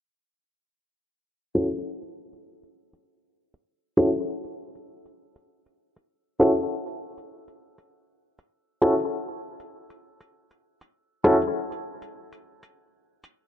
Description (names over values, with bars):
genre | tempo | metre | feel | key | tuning
glitch hop | 99 BPM | 4/4 | swing 57% on 16ths | F# minor pentatonic | A4 = 439 Hz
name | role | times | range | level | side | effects
bright baby grand piano | stabs | 1.5-11.3 s | C#4 to A4 | -22 LUFS | equal | low-pass filter, ping-pong delay
electronic hi-hat | drums | 1.7-13.3 s | none | -59 LUFS | right 1 dB | none
room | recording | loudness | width
moderate plate reverb, RT60 2.5 s | low-pass filter | -22 LUFS | side -10 dB against mid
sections
1.2-13.5 A section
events
filter sweep 1.2-13.5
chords
1.2 F#m7